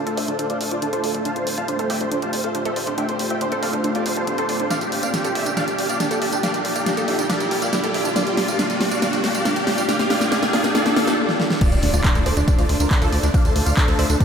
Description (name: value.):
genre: uplifting trance.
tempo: 139 BPM.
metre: 4/4.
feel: straight.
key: D minor.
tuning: A4 = 438 Hz.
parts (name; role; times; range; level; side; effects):
big supersaw lead; melody; 0.0-14.2 s; D4 to A5; -24 LUFS; equal; phaser, sidechain pumping, low-pass filter, ping-pong delay.
wide unison pluck; arpeggios; 0.0-14.2 s; D4 to D5; -27 LUFS; right 2 dB; sidechain pumping, ping-pong delay.
riser and impact; sound effects; 1.5-13.3 s; none; -30 LUFS; equal; none.
tight sequencer bass; bass; 0.1-14.2 s; F1 to F2; -26 LUFS; equal; none.
big-room dance drum kit; drums; 0.1-14.2 s; crash cymbal, handclaps, hi-hat, snare drum, tambourine; -24 LUFS; equal; small room reverb.
electronic kick drum; drums; 11.6-14.2 s; none; -18 LUFS; equal; small room reverb.
room: wet cathedral reverb, RT60 5.4 s.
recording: dreamy mix soaked in reverb.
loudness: -18 LUFS.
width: side -7 dB against mid.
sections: 0.0-11.6 A section; 11.6-14.2 B section.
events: build-up 0.0-11.6; filter sweep on supersaw synth 0.0-11.6; riser 1.5-11.2; drum fill 4.7-11.2, 11.3-11.6; stop 11.2-11.6; drop 11.6-14.2; impact 11.6-13.3.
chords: 0.0 Dm7; 1.3 Fadd9; 4.7 Gm7; 8.2 Bb; 11.6 Dm7.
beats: 0.39 0.82 | 1.25 1.69 2.12 2.55 | 2.98 3.41 3.84 4.28 | 4.71 5.14 5.57 6.00 | 6.43 6.87 7.30 7.73 | 8.16 8.59 9.02 9.46 | 9.89 10.32 10.75 11.18 | 11.61 12.04 12.48 12.91 | 13.34 13.77 14.20.